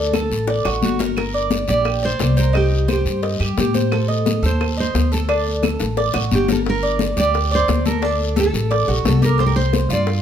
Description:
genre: latin, Cuban son and guajira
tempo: 175 BPM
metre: 4/4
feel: straight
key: G harmonic minor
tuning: A4 = 440 Hz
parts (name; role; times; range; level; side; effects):
- nylon-string guitar; melody; 0.0-10.2 s; F#4 to D5; -23 LUFS; right 1 dB; plate reverb
- Cuban tres; arpeggios; 0.0-10.2 s; D4 to Eb5; -23 LUFS; right 3 dB; none
- upright bass; bass; 0.0-10.2 s; G1 to A2; -20 LUFS; equal; none
- bongos; percussion; 0.1-10.2 s; none; -28 LUFS; left 6 dB; none
- claves; percussion; 0.1-6.3 s; none; -31 LUFS; right 9 dB; none
- congas; percussion; 0.1-10.2 s; none; -24 LUFS; left 7 dB; none
- guiro; percussion; 0.1-10.2 s; none; -31 LUFS; left 5 dB; none
room: moderate studio reverb, RT60 0.7 s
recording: none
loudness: -16 LUFS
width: side -9 dB against mid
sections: 0.0-6.7 A section; 6.7-10.2 A section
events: drum fill 0.1-1.2, 5.6-6.7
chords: 0.0 D; 1.2 Gm; 2.5 Cm; 3.9 Adim; 5.3 D; 6.7 Gm; 8.0 D; 9.4 Csus4

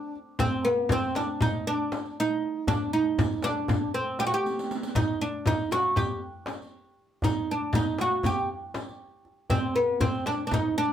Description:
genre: Turkish makam ensemble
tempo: 237 BPM (eighths)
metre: 9/8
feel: straight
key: D makam hicaz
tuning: A4 = 440 Hz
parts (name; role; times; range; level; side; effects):
- oud; melody; 0.0-10.9 s; B3-40c to G4; -26 LUFS; right 1 dB; none
- darbuka; percussion; 0.2-10.6 s; none; -34 LUFS; equal; none
- frame drum; percussion; 0.4-10.6 s; none; -30 LUFS; left 2 dB; none
- riq; percussion; 0.4-10.6 s; none; -38 LUFS; right 4 dB; none
room: wet small room reverb, RT60 0.5 s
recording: band playing live in one room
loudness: -24 LUFS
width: side -10 dB against mid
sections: 0.0-10.9 A section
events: drum fill 4.5-5.0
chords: none

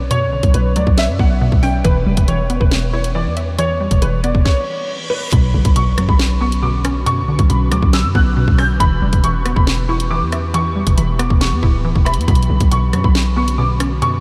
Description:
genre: hip hop, drill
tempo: 138 BPM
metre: 4/4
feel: half-time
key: B minor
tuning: A4 = 442 Hz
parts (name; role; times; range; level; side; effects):
- hollow square pluck; accompaniment; 0.0-14.2 s; B2 to E5; -23 LUFS; equal; chorus, low-pass filter
- growling 808-style bass; bass; 0.0-14.2 s; D1 to F#2; -20 LUFS; equal; none
- clear upright piano; melody; 0.1-14.2 s; B4 to G6; -24 LUFS; equal; analog chorus, low-pass filter, analog delay
- drill drum kit; drums; 0.1-14.1 s; hi-hat, kick drum, rim click, snare drum; -20 LUFS; equal; none
- reverse cymbal and impact; sound effects; 4.6-7.1 s; none; -32 LUFS; equal; none
- glassy FM pad; sustained chords; 6.3-14.2 s; D3 to B4; -30 LUFS; equal; ensemble chorus, built-in reverb
room: moderate huge ambient reverb, RT60 7.0 s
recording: dreamy mix soaked in reverb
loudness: -16 LUFS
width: mono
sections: 0.0-5.3 A section; 5.3-14.2 B section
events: stop 4.5-5.3; reverse cymbal 4.6-5.3; impact 5.3-7.1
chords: 0.0 Bmadd9; 1.8 Em; 5.3 Bmadd9; 8.8 Em; 12.3 Bmadd9

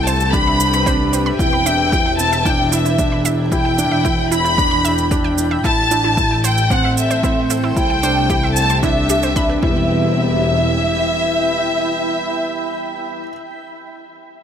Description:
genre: piano and strings electronica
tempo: 113 BPM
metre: 4/4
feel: straight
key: E minor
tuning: A4 = 441 Hz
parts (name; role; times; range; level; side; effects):
- warm studio violin section; melody; 0.0-13.2 s; E5 to B5; -19 LUFS; left 1 dB; digital delay
- granular cloud pad; sustained chords; 0.0-13.7 s; A3 to B5; -24 LUFS; equal; built-in reverb, sidechain pumping
- felt-muted upright piano; riff; 0.0-13.3 s; E3 to E4; -22 LUFS; right 1 dB; digital delay
- dark studio double bass section; bass; 0.0-11.4 s; E1 to C2; -21 LUFS; left 1 dB; tube saturation, sidechain pumping
- analog pluck; arpeggios; 0.1-10.1 s; E4 to B5; -27 LUFS; right 4 dB; chorus, sidechain pumping, digital delay
- shaker; drums; 0.1-9.5 s; none; -25 LUFS; right 10 dB; none
- electronic kick drum; drums; 0.3-9.7 s; none; -20 LUFS; equal; none
room: light reverb, small room ambience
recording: none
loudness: -14 LUFS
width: side -8 dB against mid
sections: 0.0-9.9 A section; 9.9-14.1 B section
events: drop 0.0-9.9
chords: 0.0 Cmaj7; 1.4 Em; 5.6 Am7; 7.8 Cmaj7; 9.6 Em

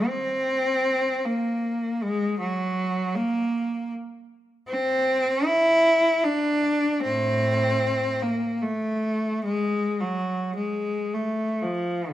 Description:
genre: classical, free, expressive piece for unaccompanied cello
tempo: free time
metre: none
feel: none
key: unclear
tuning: A4 = 440 Hz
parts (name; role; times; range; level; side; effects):
- rich cello; solo; 0.0-12.1 s; A2 to E4; -22 LUFS; equal; none
room: moderate recital hall reverb, RT60 1.6 s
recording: none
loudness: -22 LUFS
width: side -13 dB against mid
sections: 0.0-12.1 A section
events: none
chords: none

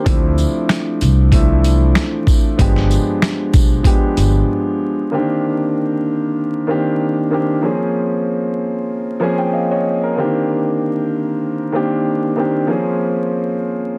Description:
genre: hip hop, boom-bap hip-hop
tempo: 95 BPM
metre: 4/4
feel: swing 55% on 16ths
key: unclear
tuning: A4 = 442 Hz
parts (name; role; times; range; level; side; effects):
- dark baby grand piano; accompaniment; 0.0-14.0 s; D3 to Ab5; -19 LUFS; equal; cassette tape, high-pass filter, low-pass filter
- upright bass; bass; 0.1-4.4 s; G1 to D2; -17 LUFS; equal; none
- boom bap sampler-style drum kit; drums; 0.1-4.3 s; hi-hat, kick drum, shaker, snare drum; -17 LUFS; equal; none
- tambourine; percussion; 0.4-4.3 s; none; -36 LUFS; equal; none
room: light reverb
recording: dense, heavily limited modern master, vinyl crackle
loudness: -17 LUFS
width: mono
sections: 0.0-5.1 A section; 5.1-14.0 B section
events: break 4.5-5.1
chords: 0.1 Dm9; 2.6 G7b9; 5.1 Cm9; 7.6 Bbm9; 10.2 Cm9; 12.7 Bbm9

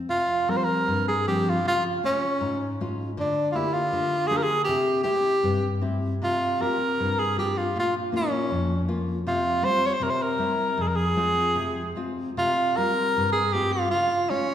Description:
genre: fado-style ballad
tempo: 78 BPM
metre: 2/4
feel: rubato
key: unclear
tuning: A4 = 441 Hz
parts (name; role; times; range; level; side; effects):
- nylon-string guitar; accompaniment; 0.0-14.5 s; F2 to G4; -28 LUFS; left 2 dB; none
- breathy tenor saxophone; melody; 0.1-14.5 s; Db4 to Db5; -23 LUFS; right 1 dB; none
room: wet recital hall reverb, RT60 1.7 s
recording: recorded in a church or concert hall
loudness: -22 LUFS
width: side -10 dB against mid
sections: 0.1-12.4 A section; 12.4-14.5 A section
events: none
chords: 0.1 Csus4; 1.6 Db; 3.2 Bb6/D; 4.7 C; 6.2 Csus4; 7.7 Bbm; 9.2 Csus4; 10.0 C; 10.8 Fm; 12.4 Csus4; 13.9 Db

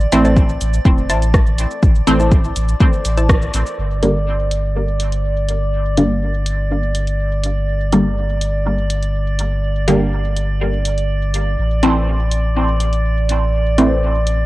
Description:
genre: dub techno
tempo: 123 BPM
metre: 4/4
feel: straight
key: G dorian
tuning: A4 = 440 Hz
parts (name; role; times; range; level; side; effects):
- filtered dub chord stab; stabs; 0.0-14.5 s; D3 to C4; -18 LUFS; equal; phaser, sidechain pumping, cassette tape, dub echo
- warm sub bass; bass; 0.0-14.5 s; E1 to A1; -18 LUFS; equal; sidechain pumping
- punchy analog drum machine; drums; 0.0-14.4 s; hi-hat, rim click, shaker; -25 LUFS; equal; overdrive
- drifting glass-harmonics texture; texture; 0.0-14.5 s; D5; -24 LUFS; right 2 dB; chorus, built-in reverb, sidechain pumping, cassette tape
- filtered dub chord stab; riff; 0.2-3.4 s; E4 to A5; -25 LUFS; left 1 dB; phaser, sidechain pumping, cassette tape, dub echo
- electronic kick drum; drums; 0.4-3.4 s; none; -13 LUFS; equal; overdrive
room: light reverb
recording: home recording on cassette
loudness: -14 LUFS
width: side -18 dB against mid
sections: 0.0-3.8 A section; 3.8-14.5 B section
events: band accent 3.3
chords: 0.0 Am; 3.8 Gm; 11.6 Am

